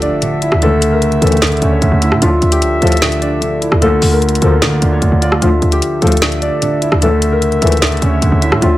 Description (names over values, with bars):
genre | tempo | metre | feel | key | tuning
hip hop, trap | 150 BPM | 4/4 | half-time | D harmonic minor | A4 = 442 Hz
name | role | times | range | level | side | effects
concert harp | melody | 0.0-8.8 s | F4 to E5 | -17 LUFS | left 2 dB | low-pass filter
dark concert grand piano | accompaniment | 0.0-8.8 s | D2 to F4 | -17 LUFS | right 2 dB | low-pass filter
mellow woodwind section | sustained chords | 0.0-8.8 s | C#3 to E5 | -22 LUFS | left 1 dB | none
short 808-style bass | bass | 0.0-8.8 s | C#2 to D3 | -15 LUFS | equal | none
trap drum kit | drums | 0.0-8.7 s | hi-hat, rim click, snare drum | -17 LUFS | equal | vintage 12-bit sampler grit
impact | sound effects | 0.0-0.6 s | none | -38 LUFS | equal | none
dark brass ensemble | stabs | 0.6-8.7 s | C#2 to F3 | -19 LUFS | left 2 dB | none
room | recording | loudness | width
light reverb, studio ambience | none | -10 LUFS | side -15 dB against mid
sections
0.0-8.8 A section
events
impact 0.0-0.6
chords
0.0 Dmadd9; 0.6 A; 2.2 Dmadd9; 3.8 Bb; 5.4 Dmadd9; 7.0 A